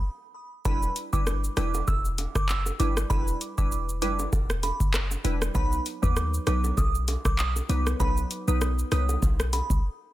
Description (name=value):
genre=dancehall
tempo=98 BPM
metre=4/4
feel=swing 56% on 16ths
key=E minor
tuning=A4 = 439 Hz
part: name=glassy synth bell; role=melody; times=0.7-9.7 s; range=B5 to E6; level=-33 LUFS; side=right 3 dB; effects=chorus, digital delay
part: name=glassy wavetable pluck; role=accompaniment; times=0.7-9.1 s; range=F#3 to B4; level=-32 LUFS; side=right 1 dB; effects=chorus, sidechain pumping
part: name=clean 808-style bass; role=bass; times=0.7-9.8 s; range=E1 to D#2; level=-27 LUFS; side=equal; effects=none
part: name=booming analog drum machine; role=drums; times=0.7-9.9 s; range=handclaps, hi-hat, kick drum, rim click, shaker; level=-27 LUFS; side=equal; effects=none
part: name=bongos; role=percussion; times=0.7-9.7 s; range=none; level=-40 LUFS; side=right 4 dB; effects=none
room=little or no reverb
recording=dense, heavily limited modern master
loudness=-24 LUFS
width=side -15 dB against mid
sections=0.0-10.1 A section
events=break 0.0-0.7, 9.8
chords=0.0 N.C.; 0.7 Em7; 5.6 B